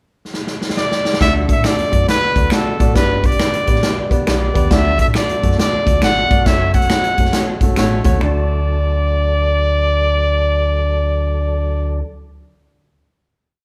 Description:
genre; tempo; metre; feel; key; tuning
uptempo 1960s-style soul; 137 BPM; 4/4; swing 64% on 8ths; D major; A4 = 436 Hz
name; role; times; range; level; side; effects
swinging big-band drum kit; drums; 0.3-8.1 s; hi-hat, kick drum, snare drum; -19 LUFS; equal; none
clear trumpet; melody; 0.8-12.0 s; A4 to F#5; -21 LUFS; equal; none
dark upright piano; accompaniment; 1.2-12.0 s; D2 to D5; -23 LUFS; equal; none
percussive tonewheel organ; sustained chords; 1.2-12.0 s; D3 to A4; -32 LUFS; equal; overdrive, chorus vibrato, fast rotary speaker
fingered electric bass; bass; 1.2-12.0 s; F#1 to A2; -22 LUFS; equal; none
finger snap; percussion; 1.6-8.5 s; none; -32 LUFS; equal; none
room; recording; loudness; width
moderate large studio reverb, RT60 1.2 s; band playing live in one room; -16 LUFS; mono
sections
0.0-1.2 pickup bar; 1.2-8.2 verse; 8.2-11.7 final chord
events
drum fill 0.3-1.2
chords
0.0 N.C.; 1.2 D; 3.0 G; 4.7 D; 6.5 F#m; 8.2 D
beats
0.34 0.78 | 1.21 1.65 2.09 2.52 | 2.96 3.40 3.84 4.27 | 4.71 5.15 5.59 6.03 | 6.46 6.90 7.34 7.77 | 8.21 8.64 9.08 9.52 | 9.95 10.39 10.82 11.26

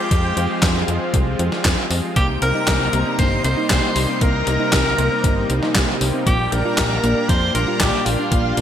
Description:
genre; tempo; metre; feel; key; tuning
synthwave; 117 BPM; 4/4; straight; C minor; A4 = 440 Hz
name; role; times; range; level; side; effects
clear tenor saxophone; melody; 0.0-8.6 s; F4 to C5; -23 LUFS; equal; digital delay
string machine, violins; second line; 0.0-8.6 s; F5 to C6; -29 LUFS; equal; ensemble chorus, digital delay
lush unison pad; sustained chords; 0.0-8.6 s; C3 to F4; -26 LUFS; right 1 dB; chorus, sidechain pumping
mellow synth brass; stabs; 0.0-8.6 s; Bb2 to Eb5; -27 LUFS; left 3 dB; chorus
tight sequencer bass; bass; 0.1-8.6 s; G1 to F2; -22 LUFS; equal; none
electronic kick drum; drums; 0.1-8.4 s; none; -20 LUFS; equal; overdrive
gated 80s digital drum machine; drums; 0.1-8.6 s; handclaps, hi-hat, snare drum; -22 LUFS; equal; gated reverb, gated reverb snare, overdrive
thumb-piano-like synth pluck; arpeggios; 2.2-8.6 s; Bb3 to G4; -28 LUFS; right 3 dB; chorus, digital delay
room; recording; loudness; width
moderate lush hall reverb, RT60 2.4 s; bright 1980s-style digital production; -16 LUFS; side -9 dB against mid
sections
0.0-8.6 A section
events
none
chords
0.0 Fmadd9; 2.2 Cm7; 6.3 Bb6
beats
| 0.11 0.62 1.14 1.65 | 2.16 2.68 3.19 3.70 | 4.21 4.73 5.24 5.75 | 6.27 6.78 7.29 7.80 | 8.32

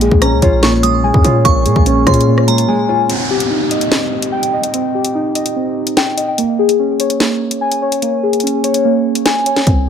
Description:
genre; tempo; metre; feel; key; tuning
hip hop, drill; 146 BPM; 4/4; half-time; unclear; A4 = 437 Hz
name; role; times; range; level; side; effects
felt-muted upright piano; accompaniment; 0.0-3.1 s; Bb2 to F4; -20 LUFS; equal; low-pass filter
muted felt-like synth keys; arpeggios; 0.0-9.9 s; Bb3 to Ab5; -14 LUFS; left 1 dB; chorus, phaser, low-pass filter, ping-pong delay
hard-hitting 808-style bass; bass; 0.0-2.7, 9.7-9.9 s; Bb1 to Bb2; -15 LUFS; equal; none
drill drum kit; drums; 0.0-9.8 s; hi-hat, kick drum, rim click, snare drum; -16 LUFS; equal; none
glassy synth bell; second line; 0.2-2.7 s; Bb5 to Eb6; -19 LUFS; right 7 dB; chorus, phaser, ping-pong delay
downlifter; sound effects; 3.1-6.4 s; none; -23 LUFS; left 1 dB; none
room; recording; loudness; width
light reverb, digital ambience; none; -12 LUFS; side -8 dB against mid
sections
0.0-3.1 A section; 3.1-9.9 B section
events
break 2.7-3.1, 3.1-9.7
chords
0.0 Bbm7; 3.1 Cm; 6.4 Bbm7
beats
0.22 0.63 1.04 | 1.45 1.86 2.27 2.68 | 3.09 3.50 3.92 4.33 | 4.74 5.15 5.56 5.97 | 6.38 6.79 7.20 7.61 | 8.03 8.44 8.85 9.26 | 9.67

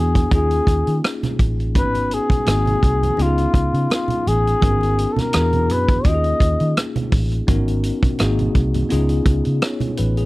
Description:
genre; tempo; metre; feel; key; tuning
lush 1970s-style soul; 84 BPM; 4/4; swing 54% on 16ths; G# dorian; A4 = 440 Hz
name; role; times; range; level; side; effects
breathy flugelhorn; melody; 0.0-6.8 s; E#4 to D#5; -21 LUFS; left 2 dB; none
bell-like tine electric piano; accompaniment; 0.0-10.3 s; A#3 to C#5; -24 LUFS; left 2 dB; medium stereo tremolo
vintage muted fingered electric bass; bass; 0.0-10.3 s; G#1 to D#3; -20 LUFS; equal; none
vintage drum kit; drums; 0.2-10.3 s; hi-hat, kick drum, rim click; -19 LUFS; equal; none
congas; percussion; 0.2-10.0 s; none; -28 LUFS; right 4 dB; none
room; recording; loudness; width
little or no reverb; dry, close 1970s-style studio recording; -16 LUFS; side -20 dB against mid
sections
0.0-10.3 A section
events
none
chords
0.3 D#9sus4; 1.8 G#m7; 2.5 G#7; 3.2 C#7; 4.6 G#m11; 5.3 E9; 6.0 D#9sus4; 7.5 G#m11; 8.2 G#7; 8.9 C#7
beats
0.32 1.04 | 1.75 2.47 3.19 3.90 | 4.62 5.33 6.05 6.77 | 7.48 8.20 8.91 9.63

